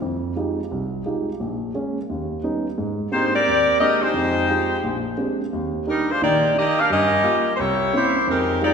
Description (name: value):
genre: jazz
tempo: 175 BPM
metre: 4/4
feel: swing 63% on 8ths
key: Eb major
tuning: A4 = 440 Hz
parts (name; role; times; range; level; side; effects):
- dark baby grand piano; accompaniment; 0.0-8.7 s; Bb1 to G4; -23 LUFS; right 2 dB; none
- warm saxophone section; melody; 3.1-8.7 s; G3 to F5; -18 LUFS; left 1 dB; none
room: wet scoring stage reverb, RT60 1.9 s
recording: recorded in a church or concert hall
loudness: -19 LUFS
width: side -6 dB against mid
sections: 0.0-8.3 A section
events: none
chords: 0.0 Fm9; 1.4 Bbm7; 2.1 Ebaug7; 2.8 Abmaj9#11; 4.1 Fm9; 4.8 Bb13; 5.5 Ebmaj7; 6.9 Gm7b5; 7.6 C7b9